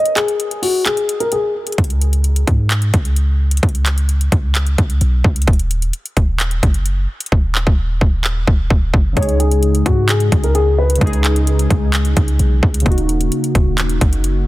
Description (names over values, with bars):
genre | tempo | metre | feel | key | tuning
hip hop, trap | 130 BPM | 4/4 | half-time | unclear | A4 = 440 Hz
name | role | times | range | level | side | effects
dark concert grand piano | melody | 0.0-1.5, 9.2-11.0 s | Gb4 to Eb5 | -18 LUFS | left 2 dB | low-pass filter, tape echo
trap drum kit | drums | 0.1-14.3 s | handclaps, hi-hat, kick drum | -17 LUFS | equal | none
warm 808-style bass | bass | 1.8-14.5 s | Eb1 to Ab2 | -16 LUFS | equal | none
warbly lo-fi synth keys | accompaniment | 9.1-14.5 s | Db3 to Ab4 | -20 LUFS | equal | chorus, low-pass filter
room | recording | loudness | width
digital ambience | dense, heavily limited modern master | -13 LUFS | side -17 dB against mid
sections
0.0-14.5 A section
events
break 0.0-1.8; hi-hats muted 7.3-9.2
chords
0.0 N.C.; 1.8 Db5; 5.5 Ebm; 9.2 Dbsus2; 12.9 Ebm7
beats
0.40 0.86 1.32 | 1.78 2.24 2.71 3.17 | 3.63 4.09 4.55 5.01 | 5.47 5.94 6.40 6.86 | 7.32 7.78 8.24 8.71 | 9.17 9.63 10.09 10.55 | 11.01 11.47 11.94 12.40 | 12.86 13.32 13.78 14.24